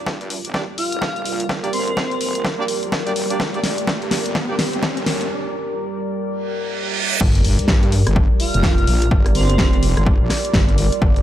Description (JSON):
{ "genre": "bass house", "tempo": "126 BPM", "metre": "4/4", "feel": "swing 61% on 16ths", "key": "G minor", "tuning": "A4 = 436 Hz", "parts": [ { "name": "deep dark ambient pad", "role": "sustained chords", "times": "0.3-11.2 s", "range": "G3 to D5", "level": "-27 LUFS", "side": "equal", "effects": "chorus, built-in reverb, sidechain pumping" }, { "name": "wobble bass", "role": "bass", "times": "0.0-11.2 s", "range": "F1 to G2", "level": "-21 LUFS", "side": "equal", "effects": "chorus, overdrive, sidechain pumping, high-pass filter" }, { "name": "riser, reverse cymbal and sub drop", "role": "sound effects", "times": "0.0-9.1 s", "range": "none", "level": "-26 LUFS", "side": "right 1 dB", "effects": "none" }, { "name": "deep dark ambient pad", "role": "texture", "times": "0.0-11.2 s", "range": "F4 to D5", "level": "-30 LUFS", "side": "right 5 dB", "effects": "chorus, built-in reverb, sidechain pumping" }, { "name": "big-room dance drum kit", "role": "drums", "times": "0.1-11.2 s", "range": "crash cymbal, hi-hat, rim click, snare drum", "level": "-23 LUFS", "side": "left 1 dB", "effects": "none" }, { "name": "electronic kick drum", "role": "drums", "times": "0.1-11.1 s", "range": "none", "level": "-19 LUFS", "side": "equal", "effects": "overdrive, high-pass filter on kick, high-pass filter on room" }, { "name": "bright horn section", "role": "stabs", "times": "0.5-4.6 s", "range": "Bb3 to D5", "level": "-29 LUFS", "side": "right 2 dB", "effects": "sidechain pumping, dub echo" }, { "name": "airy dreamy lead", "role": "melody", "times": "0.8-2.4, 8.4-10.0 s", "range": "C4 to F4", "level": "-26 LUFS", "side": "equal", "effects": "chorus, phaser, cassette tape, dub echo" } ], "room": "light reverb", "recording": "none", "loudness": "-16 LUFS", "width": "side -12 dB against mid", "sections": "0.0-7.2 A section; 7.2-11.2 B section", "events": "build-up 0.0-7.2; drum fill 0.0-5.3; riser 0.0-5.3; break 5.3-7.2; reverse cymbal 6.5-7.2; drop 7.2-11.2; impact 7.2-9.1", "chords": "0.0 Gm" }